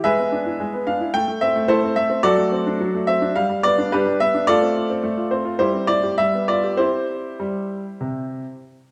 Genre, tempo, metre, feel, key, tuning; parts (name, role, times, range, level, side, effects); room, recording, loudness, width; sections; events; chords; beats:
classical-period piano sonatina; 107 BPM; 4/4; uneven beats, rubato; C major; A4 = 440 Hz
clear baby grand piano; solo; 0.0-8.6 s; C3 to G5; -20 LUFS; equal
moderate recital hall reverb, RT60 1.7 s; -20 LUFS; mono
0.0-8.9 A section
0.0 E7/G#; 1.1 Am; 2.2 D7/F#; 3.3 G; 4.5 F/A; 5.6 C/G; 6.2 G7; 6.8 C
| 0.04 0.59 1.15 1.70 | 2.24 2.79 3.35 3.90 | 4.46 5.03 5.59 6.18 | 6.78 7.40 8.01